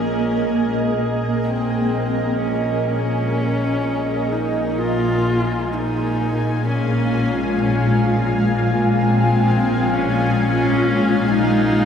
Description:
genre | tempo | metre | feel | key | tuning
ambient | 64 BPM | 4/4 | straight | unclear | A4 = 442 Hz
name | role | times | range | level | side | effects
dark horsehead fiddle | melody | 0.0-11.8 s | C4 to F4 | -24 LUFS | equal | diffuse ambient delay
granular cloud pad | sustained chords | 0.0-11.8 s | Bb2 to F5 | -20 LUFS | left 1 dB | built-in reverb
bowed-like drone | drone | 0.0-11.8 s | Bb1 to Bb2 | -23 LUFS | left 1 dB | built-in reverb
bubbling stepped-filter texture | texture | 0.0-11.8 s | Eb5 to Ab5 | -27 LUFS | right 1 dB | chorus, built-in reverb
room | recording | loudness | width
wet cathedral reverb, RT60 6.2 s | none | -17 LUFS | side -8 dB against mid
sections
0.0-11.8 A section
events
fade-in on synth drone 0.0-11.8; fade-in on horsehead fiddle 0.0-11.8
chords
0.0 Bbm7; 4.8 Db/Bb

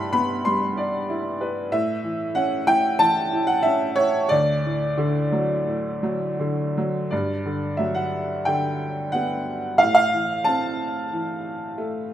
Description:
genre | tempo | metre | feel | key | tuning
classical, lyrical solo piano | 78-96 BPM | 4/4 | rubato | unclear | A4 = 440 Hz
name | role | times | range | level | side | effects
clear upright piano | solo | 0.0-12.1 s | D2 to C6 | -20 LUFS | equal | none
room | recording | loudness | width
moderate recital hall reverb, RT60 1.5 s | none | -20 LUFS | side -11 dB against mid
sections
0.0-7.1 A section; 7.1-12.1 B section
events
none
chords
0.0 Cmaj9; 1.7 A; 4.3 D; 7.1 Gmaj7; 9.8 Am

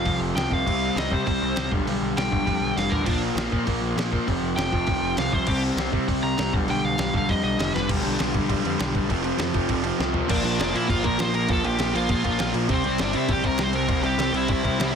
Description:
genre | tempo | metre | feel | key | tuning
punk rock | 199 BPM | 4/4 | straight | unclear | A4 = 441 Hz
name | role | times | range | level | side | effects
smooth overdriven lead guitar | melody | 0.0-7.9, 10.3-14.9 s | C4 to C6 | -27 LUFS | equal | none
overdriven electric guitar | riff | 0.0-15.0 s | F2 to C4 | -28 LUFS | right 14 dB | none
raw garage guitar | riff | 0.0-14.9 s | F2 to C4 | -28 LUFS | left 15 dB | overdrive
growling picked electric bass | bass | 0.1-14.9 s | F1 to C3 | -30 LUFS | equal | overdrive
dusty soul sampler-style drum kit | drums | 0.1-14.9 s | crash cymbal, hi-hat, kick drum, snare drum, toms | -28 LUFS | equal | none
crunchy overdriven guitar | riff | 7.9-14.9 s | F2 to C4 | -31 LUFS | equal | none
room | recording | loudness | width
little or no reverb | dense, heavily limited modern master | -21 LUFS | side -7 dB against mid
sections
0.0-7.9 A section; 7.9-10.3 B section; 10.3-15.0 C section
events
lead electric guitar solo 0.0-7.9; drum fill 2.8-3.1, 7.7, 10.0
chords
0.0 F5; 0.7 C5; 1.7 G/B; 3.1 Bb5; 4.3 F5; 5.5 C5; 6.5 G/B; 9.1 F5; 10.3 Bb; 12.7 C

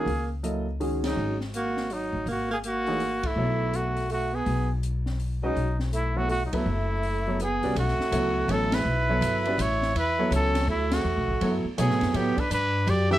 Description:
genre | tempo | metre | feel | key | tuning
modal jazz | 164 BPM | 3/4 | swing 64% on 8ths | B minor from 7.8 s | A4 = 440 Hz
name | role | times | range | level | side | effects
warm trumpet | melody | 0.0-13.2 s | D#4 to E5 | -28 LUFS | equal | none
warm tenor saxophone | second line | 0.0-13.2 s | F#3 to G4 | -31 LUFS | right 3 dB | none
warm concert grand piano | accompaniment | 0.0-13.2 s | D#3 to D#5 | -29 LUFS | right 1 dB | none
upright bass | bass | 0.0-13.2 s | F#1 to B2 | -28 LUFS | left 1 dB | none
open jazz drum kit | drums | 0.1-13.2 s | hi-hat, kick drum, ride cymbal, snare drum | -36 LUFS | equal | none
room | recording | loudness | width
light reverb | none | -24 LUFS | side -14 dB against mid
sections
0.0-7.8 A section; 7.8-13.2 B section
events
band accent 1.0, 3.2, 6.5, 8.7, 10.9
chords
0.0 G#9sus4; 3.4 B9sus4; 12.1 A9sus4

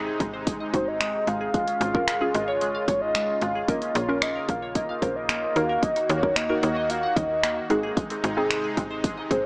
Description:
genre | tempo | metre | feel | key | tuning
dance-pop | 112 BPM | 4/4 | straight | unclear | A4 = 444 Hz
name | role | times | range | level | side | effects
hollow square pluck | accompaniment | 0.0-9.5 s | C4 to Bb4 | -29 LUFS | equal | chorus, sidechain pumping, dub echo
supersaw pad | sustained chords | 0.0-9.5 s | C3 to Gb4 | -32 LUFS | equal | sidechain pumping
glassy wavetable pluck | arpeggios | 0.0-9.3 s | Ab3 to Gb5 | -35 LUFS | equal | chorus, sidechain pumping, dub echo
slap-like FM bass | bass | 0.0-9.5 s | Ab1 to Eb2 | -30 LUFS | equal | sidechain pumping
pop drum kit | drums | 0.2-9.4 s | finger snaps, hi-hat, kick drum | -27 LUFS | equal | none
soft octave-layered synth lead | melody | 0.7-9.5 s | C5 to F5 | -26 LUFS | equal | chorus, phaser, dub echo
room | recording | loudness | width
light reverb | echo-heavy mix, small speaker sound | -22 LUFS | side -33 dB against mid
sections
0.0-9.5 A section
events
none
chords
0.0 Ab; 1.5 Db/Ab; 3.7 Bbm; 5.6 Ebm; 7.7 Ab

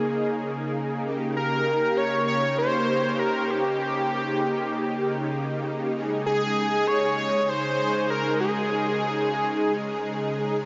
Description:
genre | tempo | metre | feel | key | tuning
synthwave | 98 BPM | 4/4 | straight | unclear | A4 = 440 Hz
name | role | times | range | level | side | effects
unison lead | melody | 0.0-10.2 s | G4 to Db5 | -28 LUFS | equal | diffuse ambient delay
soft supersaw | sustained chords | 0.0-10.7 s | Db3 to Ab4 | -29 LUFS | equal | ensemble chorus
room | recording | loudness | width
wet huge ambient reverb, RT60 7.7 s | dreamy mix soaked in reverb, nothing above 7.6 kHz | -25 LUFS | mono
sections
0.0-10.7 A section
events
none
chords
0.0 Bbm7; 1.1 Eb7; 6.0 Absus4

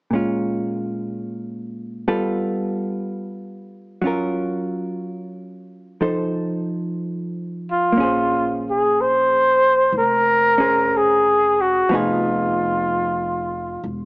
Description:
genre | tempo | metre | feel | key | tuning
jazz ballad | 61 BPM | 4/4 | swing 66% on 8ths | Bb minor | A4 = 440 Hz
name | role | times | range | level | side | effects
hollow-body jazz guitar | accompaniment | 0.1-13.9 s | Bb2 to C5 | -23 LUFS | equal | none
warm flugelhorn | melody | 7.7-13.9 s | F4 to C5 | -16 LUFS | equal | none
upright bass | bass | 8.0-14.1 s | E1 to Bb1 | -30 LUFS | equal | none
room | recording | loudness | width
moderate plate reverb, RT60 2.5 s | small speaker sound | -17 LUFS | side -25 dB against mid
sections
0.1-8.0 A section; 8.0-14.1 B section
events
none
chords
0.1 Bbm7; 2.1 G9; 4.0 Gbmaj7; 6.0 F7; 8.0 Bbm9; 11.9 Fm7b5

